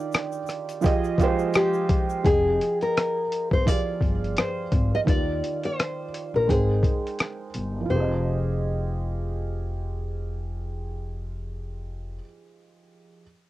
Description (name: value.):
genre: lo-fi hip hop.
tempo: 85 BPM.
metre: 4/4.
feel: swing 59% on 16ths.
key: F dorian.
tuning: A4 = 436 Hz.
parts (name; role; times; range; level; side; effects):
felt-muted upright piano; accompaniment; 0.0-13.2 s; Eb3 to G5; -29 LUFS; right 5 dB; cassette tape.
dusty soul sampler-style drum kit; drums; 0.1-7.7 s; hi-hat, kick drum, rim click; -24 LUFS; left 1 dB; cassette tape.
tube shaker; percussion; 0.1-2.2 s; none; -50 LUFS; left 10 dB; none.
nylon-string guitar; melody; 1.6-12.2 s; G4 to Eb5; -26 LUFS; left 2 dB; cassette tape.
upright bass; bass; 2.2-12.2 s; F1 to Eb2; -28 LUFS; left 1 dB; none.
room: moderate booth ambience, RT60 0.2 s.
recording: home recording on cassette.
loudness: -22 LUFS.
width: side -16 dB against mid.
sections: 0.0-2.2 A section; 2.2-7.9 B section; 7.9-10.7 C section.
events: break 0.0-2.2.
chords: 0.0 Ebmaj9; 0.8 Fm7; 2.2 Fm9; 5.1 Ebmaj9; 6.5 Abmaj7; 7.9 Fm9.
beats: 0.13 0.83 1.54 | 2.25 2.95 3.66 4.36 | 5.07 5.78 6.48 7.19 | 7.89 8.60 9.30 10.01.